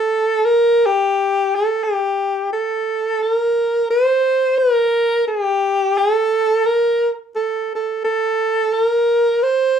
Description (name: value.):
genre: hawaiian.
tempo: 87 BPM.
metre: 4/4.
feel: swing 58% on 8ths.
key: unclear.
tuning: A4 = 442 Hz.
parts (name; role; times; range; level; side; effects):
warm alto saxophone; solo; 0.0-9.8 s; G4 to C5; -15 LUFS; equal; none.
room: wet small room ambience, RT60 0.5 s.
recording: heard from further back in the room.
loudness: -15 LUFS.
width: side -7 dB against mid.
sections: 0.0-3.2 A section; 3.2-9.8 A section.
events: none.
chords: none.